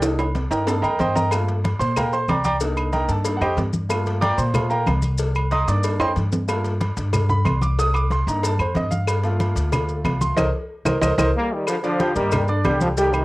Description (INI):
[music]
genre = latin, salsa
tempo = 186 BPM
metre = 4/4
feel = straight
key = G minor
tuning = A4 = 443 Hz
[part]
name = clear grand piano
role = accompaniment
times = 0.0-13.2 s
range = G3 to G6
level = -23 LUFS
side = right 1 dB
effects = cassette tape
[part]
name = upright bass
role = bass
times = 0.0-13.2 s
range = C2 to Bb2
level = -22 LUFS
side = equal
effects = none
[part]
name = congas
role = percussion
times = 0.0-13.2 s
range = none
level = -26 LUFS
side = left 1 dB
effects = none
[part]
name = cowbell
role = percussion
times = 0.0-13.1 s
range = none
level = -30 LUFS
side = left 3 dB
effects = none
[part]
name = maracas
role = percussion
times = 0.0-13.2 s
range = none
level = -36 LUFS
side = left 4 dB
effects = none
[part]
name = timbales and agogo bells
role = percussion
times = 0.0-13.2 s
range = none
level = -28 LUFS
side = right 2 dB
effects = none
[part]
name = claves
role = percussion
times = 1.3-13.2 s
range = none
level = -34 LUFS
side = left 4 dB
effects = none
[part]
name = bright trombone section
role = melody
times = 11.4-13.2 s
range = C3 to Bb3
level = -22 LUFS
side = equal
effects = cassette tape
[sound]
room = light reverb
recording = home recording on cassette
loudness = -18 LUFS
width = side -19 dB against mid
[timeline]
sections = 0.0-11.7 A section; 11.7-13.2 B section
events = grand piano solo 0.0-11.7; drum fill 0.0-1.3, 6.0-6.5, 10.7-11.7; band accent 10.4-11.7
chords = 0.0 Cm7; 1.3 Gm7; 2.6 Cm7; 3.9 Gm7; 5.2 Cm7; 6.5 Gm7; 7.8 Cm7; 9.1 Gm7; 10.4 Cm7; 11.7 Gm7